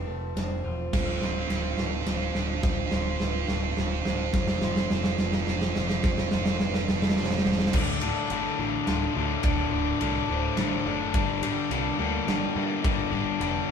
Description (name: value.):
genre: post-rock.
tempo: 106 BPM.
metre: 3/4.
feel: straight.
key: D minor from 7.7 s.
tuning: A4 = 439 Hz.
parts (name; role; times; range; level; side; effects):
twelve-string electric guitar; arpeggios; 0.0-13.7 s; D2 to G4; -36 LUFS; left 1 dB; none.
vibraphone with soft mallets; arpeggios; 0.0-13.7 s; B4 to F5; -37 LUFS; right 3 dB; none.
growling picked electric bass; bass; 0.0-13.7 s; D1 to G2; -32 LUFS; equal; overdrive.
big rock drum kit; drums; 0.4-13.5 s; crash cymbal, kick drum, ride cymbal, snare drum; -28 LUFS; equal; none.
sludgy distorted guitar; riff; 0.9-7.7 s; C4 to F4; -31 LUFS; right 7 dB; overdrive.
crunchy overdriven guitar; riff; 7.7-13.7 s; D2 to G3; -27 LUFS; left 6 dB; spring reverb.
room: wet studio reverb, RT60 0.7 s.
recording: band playing live in one room.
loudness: -24 LUFS.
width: side -7 dB against mid.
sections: 0.0-7.7 A section; 7.7-13.7 B section.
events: build-up 0.0-7.7; drum fill 0.0-7.7.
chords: 0.0 F; 0.9 Dm7; 4.3 F; 7.7 Dm; 11.1 Gm7.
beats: 0.36 | 0.93 1.50 2.07 | 2.64 3.21 3.77 | 4.34 4.91 5.47 | 6.04 6.61 7.17 | 7.74 8.31 8.87 | 9.44 10.01 10.57 | 11.14 11.71 12.28 | 12.84 13.41.